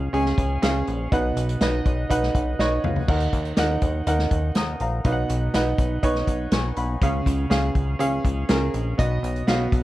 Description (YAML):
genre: piano-driven pop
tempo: 122 BPM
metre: 4/4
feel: straight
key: unclear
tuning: A4 = 436 Hz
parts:
  - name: clear concert grand piano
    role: accompaniment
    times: 0.0-9.8 s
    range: B2 to D#6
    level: -24 LUFS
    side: right 1 dB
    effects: plate reverb
  - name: chorused synth bass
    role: bass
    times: 0.0-9.8 s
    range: A#1 to D#2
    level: -25 LUFS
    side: equal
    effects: none
  - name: unplugged drum kit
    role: drums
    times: 0.1-9.8 s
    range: crash cymbal, hi-hat, kick drum, snare drum, toms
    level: -24 LUFS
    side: equal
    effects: none
room: light reverb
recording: worn, warbling old tape, cassette tape, warbly pitch drift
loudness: -20 LUFS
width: side -16 dB against mid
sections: 0.0-9.8 A section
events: grand piano fill 2.1-3.1; drum fill 2.6-3.1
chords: 0.0 C#; 1.1 B; 3.1 D#m; 5.0 B; 7.0 C#; 9.0 B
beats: 0.13 0.62 | 1.12 1.61 2.10 2.59 | 3.08 3.58 4.07 4.56 | 5.05 5.54 6.03 6.53 | 7.02 7.51 8.00 8.49 | 8.98 9.48